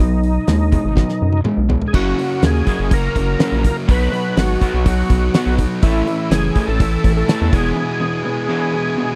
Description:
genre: classic rock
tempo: 124 BPM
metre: 4/4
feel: straight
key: unclear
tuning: A4 = 439 Hz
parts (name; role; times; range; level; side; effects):
- overdriven tonewheel organ; melody; 0.0-9.2 s; Eb4 to Cb5; -25 LUFS; equal; slow rotary speaker, chorus vibrato
- crunchy overdriven guitar; riff; 0.0-9.2 s; E2 to Cb4; -24 LUFS; equal; none
- distorted electric guitar; riff; 0.0-9.2 s; E2 to Gb4; -27 LUFS; equal; overdrive
- rubbery square bass; bass; 0.0-7.7 s; E1 to Gb2; -20 LUFS; equal; none
- damped 70s drum kit; drums; 0.2-7.6 s; crash cymbal, hi-hat, kick drum, snare drum, toms; -18 LUFS; equal; none
room: little or no reverb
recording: dry, close 1970s-style studio recording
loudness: -17 LUFS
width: mono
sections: 0.0-1.9 A section; 1.9-9.2 B section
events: drum fill 1.0-1.9; break 7.8-9.2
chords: 0.0 Cb; 1.9 Gbadd9; 3.9 Cb; 5.8 A; 7.5 E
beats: 0.48 0.97 1.45 | 1.94 2.43 2.91 3.40 | 3.88 4.37 4.86 5.34 | 5.83 6.31 6.80 7.28 | 7.76 8.25 8.73

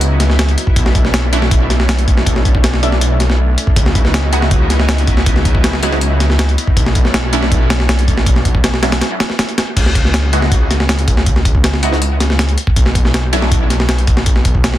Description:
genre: drum and bass, jungle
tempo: 160 BPM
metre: 4/4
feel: straight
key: C# phrygian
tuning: A4 = 440 Hz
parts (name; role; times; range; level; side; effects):
- lush unison pad; sustained chords; 0.0-9.7 s; F#3 to E4; -23 LUFS; equal; chorus, vintage 12-bit sampler grit
- detuned saw bass; bass; 0.0-14.8 s; B1 to C#2; -15 LUFS; equal; none
- breakbeat sampler-style drum kit; drums; 0.0-14.8 s; crash cymbal, hi-hat, kick drum, snare drum; -14 LUFS; equal; none
- orchestra-hit-like synth stab; stabs; 1.3-13.4 s; F#3 to F#4; -21 LUFS; right 2 dB; built-in reverb, phaser, dub echo
room: digital ambience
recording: dense, heavily limited modern master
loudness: -11 LUFS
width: side -13 dB against mid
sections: 0.0-9.8 A section; 9.8-14.8 A section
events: drop 0.0-9.8, 9.8-14.8; break 9.0-9.8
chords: 0.0 C#m11; 0.8 Bm11; 3.8 C#m11; 6.8 Bm11; 9.8 C#m11; 12.8 N.C.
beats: 0.01 0.39 | 0.77 1.14 1.51 1.89 | 2.27 2.64 3.02 3.39 | 3.77 4.14 4.51 4.89 | 5.26 5.64 6.01 6.39 | 6.76 7.14 7.51 7.89 | 8.27 8.64 9.02 9.39 | 9.77 10.14 10.52 10.89 | 11.27 11.64 12.02 12.39 | 12.77 13.14 13.52 13.89 | 14.27 14.64

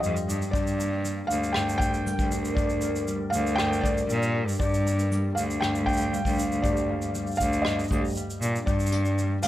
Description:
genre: folktronica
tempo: 118 BPM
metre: 4/4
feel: straight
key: unclear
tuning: A4 = 439 Hz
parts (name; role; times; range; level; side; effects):
- felt-muted upright piano; melody; 0.0-9.5 s; D5 to G5; -30 LUFS; left 1 dB; digital delay
- warbly tape-like pad; sustained chords; 0.3-9.5 s; G3 to F5; -37 LUFS; equal; chorus, built-in reverb
- concert harp; arpeggios; 0.0-9.5 s; G2 to G4; -31 LUFS; left 2 dB; digital delay
- bright cello; bass; 0.0-9.5 s; D2 to Bb2; -27 LUFS; right 1 dB; none
- vintage brush drum kit; drums; 0.0-9.5 s; hi-hat, rim click, shaker; -36 LUFS; right 1 dB; none
- kick drum; drums; 0.5-8.8 s; none; -30 LUFS; equal; none
room: little or no reverb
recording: vinyl crackle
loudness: -24 LUFS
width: side -14 dB against mid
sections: 0.0-9.5 A section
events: none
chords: 0.0 Bb6/D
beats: 0.03 | 0.53 1.04 1.55 2.06 | 2.57 3.08 3.58 4.09 | 4.60 5.11 5.62 6.13 | 6.63 7.14 7.65 8.16 | 8.67 9.18

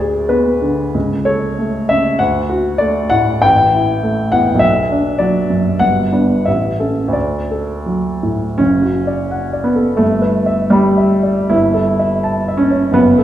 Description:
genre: classical, romantic character piece for solo piano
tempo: 74-103 BPM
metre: 2/4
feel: rubato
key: D major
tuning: A4 = 438 Hz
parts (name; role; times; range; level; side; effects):
- warm upright piano; solo; 0.0-13.2 s; F#1 to B5; -12 LUFS; equal; none
room: wet recital hall reverb, RT60 1.4 s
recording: heard from further back in the room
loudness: -12 LUFS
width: side -12 dB against mid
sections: 0.0-8.6 A section; 8.6-13.2 B section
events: none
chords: 0.0 G#dim/D; 0.9 A/C#; 2.2 D; 3.4 A5; 4.6 Bm; 5.8 G; 6.5 A; 7.1 D; 8.6 D/F#; 10.0 Em7/G; 11.5 A7/G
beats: 0.30 | 0.95 1.58 | 2.20 2.81 | 3.43 4.03 | 4.62 5.20 | 5.81 6.47 | 7.15 7.87 | 8.59 9.31 | 10.01 10.73 | 11.52 12.24 | 12.95

